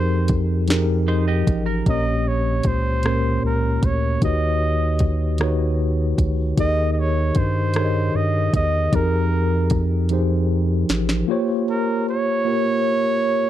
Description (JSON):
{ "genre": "slow six-eight R&B", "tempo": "51 BPM (dotted quarters)", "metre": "6/8", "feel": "straight", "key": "Bb dorian", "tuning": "A4 = 437 Hz", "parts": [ { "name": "clear flugelhorn", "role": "melody", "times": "0.0-13.5 s", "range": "Bb4 to Eb5", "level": "-24 LUFS", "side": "right 2 dB", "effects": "tape echo" }, { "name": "mellow tine electric piano", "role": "accompaniment", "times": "0.0-13.5 s", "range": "Bb2 to Eb5", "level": "-22 LUFS", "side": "left 1 dB", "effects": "medium stereo tremolo" }, { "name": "round analog bass", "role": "bass", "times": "0.0-11.2 s", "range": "A1 to G2", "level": "-22 LUFS", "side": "equal", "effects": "none" }, { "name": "smooth R&B drum kit", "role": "drums", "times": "0.3-11.3 s", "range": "hi-hat, kick drum, rim click, snare drum", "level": "-21 LUFS", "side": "equal", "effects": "none" }, { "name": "semi-hollow electric guitar", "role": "second line", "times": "1.1-2.0 s", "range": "Eb4 to Eb5", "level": "-29 LUFS", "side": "right 6 dB", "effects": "wide subtle chorus" } ], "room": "little or no reverb", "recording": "dry, close 1970s-style studio recording", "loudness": "-18 LUFS", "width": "side -12 dB against mid", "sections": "0.0-1.9 A section; 1.9-11.3 B section; 11.3-13.5 C section", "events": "flugelhorn solo 0.0-1.9; drum fill 10.1-11.3", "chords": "0.0 Fm11; 1.9 Bbm69; 4.2 Eb7alt; 6.6 Abmaj9/Eb; 8.9 Fm11; 11.3 Bbm69" }